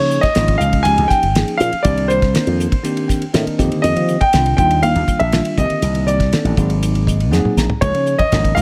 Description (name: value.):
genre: electric jazz fusion.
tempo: 121 BPM.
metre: 4/4.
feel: straight.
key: unclear.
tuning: A4 = 439 Hz.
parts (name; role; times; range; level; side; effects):
clear concert grand piano; melody; 0.0-8.6 s; C5 to Ab5; -20 LUFS; equal; none.
bell-like tine electric piano; accompaniment; 0.0-8.6 s; D3 to Bb5; -24 LUFS; equal; subtle chorus.
slap bass with an envelope filter; bass; 0.0-8.6 s; Ab1 to F3; -20 LUFS; equal; none.
damped 70s drum kit; drums; 0.1-8.6 s; hi-hat, kick drum, ride cymbal, snare drum, toms; -23 LUFS; equal; none.
congas; percussion; 8.2-8.6 s; none; -25 LUFS; equal; none.
room: studio ambience.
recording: none.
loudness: -16 LUFS.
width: mono.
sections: 0.0-8.6 A section.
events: tine electric piano fill 2.8-3.8, 6.8-7.8; drum fill 7.3-7.8.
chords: 0.0 Db69; 1.8 Cm9; 3.6 F13sus4; 4.6 Ebmaj9; 5.6 Cm9; 6.6 Ab9; 7.8 Db69.